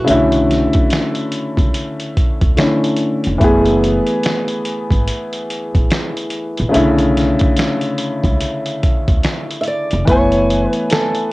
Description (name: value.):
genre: lo-fi hip hop.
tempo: 72 BPM.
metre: 4/4.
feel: swing 62% on 16ths.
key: unclear.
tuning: A4 = 442 Hz.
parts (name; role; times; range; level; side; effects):
flamenco guitar; melody; 0.0-2.4, 9.6-11.3 s; F#4 to E5; -20 LUFS; right 1 dB; plate reverb, analog delay.
warm upright piano; accompaniment; 0.0-11.3 s; C#3 to G#5; -16 LUFS; left 1 dB; plate reverb.
upright bass; bass; 0.0-10.6 s; E#1 to D2; -20 LUFS; equal; none.
lo-fi sampler-style drum kit; drums; 0.1-11.3 s; finger snaps, hi-hat, kick drum, snare drum; -18 LUFS; equal; none.
room: moderate small room reverb, RT60 0.6 s.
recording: home recording on cassette.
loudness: -13 LUFS.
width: side -20 dB against mid.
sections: 0.0-11.3 A section.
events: none.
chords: 0.1 Bm11; 3.4 F#m11; 6.7 Bm11; 10.1 F#m11.